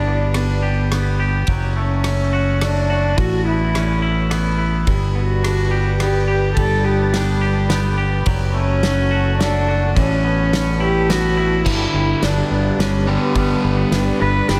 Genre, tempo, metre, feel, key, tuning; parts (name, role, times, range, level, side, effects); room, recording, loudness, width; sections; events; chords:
post-rock; 106 BPM; 3/4; straight; G lydian; A4 = 440 Hz
warm cello; melody; 0.0-14.6 s; B3 to B4; -24 LUFS; equal; tape echo
twangy electric guitar; arpeggios; 0.0-14.6 s; G2 to G4; -28 LUFS; equal; tape echo
growling fingered electric bass; bass; 0.0-14.6 s; F#1 to A1; -21 LUFS; equal; overdrive
loose indie drum kit; drums; 0.3-14.6 s; crash cymbal, kick drum, ride cymbal, rim click, snare drum; -27 LUFS; equal
warbly tape-like pad; sustained chords; 5.4-14.6 s; G3 to B5; -31 LUFS; equal; chorus, built-in reverb, phaser
overdriven semi-hollow guitar; riff; 11.6-14.6 s; G2 to G3; -23 LUFS; equal; phaser
moderate huge ambient reverb, RT60 4.4 s; dreamy mix soaked in reverb; -18 LUFS; mono
0.0-11.7 A section; 11.7-14.6 B section
0.0 G; 1.5 D/F#; 3.2 Aadd9; 4.9 G; 8.3 D/F#; 10.0 Aadd9; 11.7 G